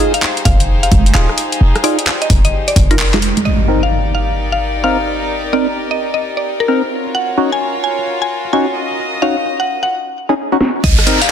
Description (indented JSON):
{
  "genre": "UK garage, two-step garage",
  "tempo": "130 BPM",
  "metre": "4/4",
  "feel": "swing 64% on 16ths",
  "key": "C minor",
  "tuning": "A4 = 440 Hz",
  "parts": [
    { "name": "warm studio violin section", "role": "sustained chords", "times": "0.0-11.3 s", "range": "Eb4 to Eb5", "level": "-22 LUFS", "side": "left 1 dB", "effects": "sidechain pumping" },
    { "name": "percussive organ stab", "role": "stabs", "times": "0.0-11.2 s", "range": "C4 to Bb4", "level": "-18 LUFS", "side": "equal", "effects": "chorus, phaser, vintage 12-bit sampler grit, ping-pong delay" },
    { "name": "mallet-like synth pluck", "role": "melody", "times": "0.1-11.3 s", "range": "Bb4 to Ab5", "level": "-20 LUFS", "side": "left 1 dB", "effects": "chorus, ping-pong delay" },
    { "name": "garage drum kit", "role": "drums", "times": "0.1-11.3 s", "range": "congas, crash cymbal, handclaps, hi-hat, rim click, snare drum, tambourine", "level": "-17 LUFS", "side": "right 1 dB", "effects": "low-pass filter on hats, low-pass filter on perc, soft clipping on snare, low-pass filter on snare, low-pass filter on cymbals" },
    { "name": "short 808-style bass", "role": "bass", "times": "0.5-3.3, 10.8-11.0 s", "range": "Eb1 to C2", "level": "-13 LUFS", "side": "equal", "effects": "none" },
    { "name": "electronic kick drum", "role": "drums", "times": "0.5-2.9, 10.8-11.0 s", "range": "none", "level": "-14 LUFS", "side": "equal", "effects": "none" },
    { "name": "impact and downlifter", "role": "sound effects", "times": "3.5-5.3, 10.8-11.3 s", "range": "none", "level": "-17 LUFS", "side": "equal", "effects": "none" }
  ],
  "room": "light reverb",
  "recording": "dense, heavily limited modern master",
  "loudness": "-12 LUFS",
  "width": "side -8 dB against mid",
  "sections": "0.0-3.5 A section; 3.5-10.8 B section",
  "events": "kick drops out 3.0-3.5; band accent 3.0; impact 3.5-5.3; filter sweep on synth stab 3.5-10.8; drum fill 10.6",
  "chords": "0.0 Fm7; 3.5 Cm7; 6.9 Ebm7",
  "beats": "0.22 0.68 1.15 | 1.61 2.07 2.53 2.99 | 3.45 3.91 4.38 4.84 | 5.30 5.76 6.22 6.68 | 7.14 7.61 8.07 8.53 | 8.99 9.45 9.91 10.38 | 10.84 11.30"
}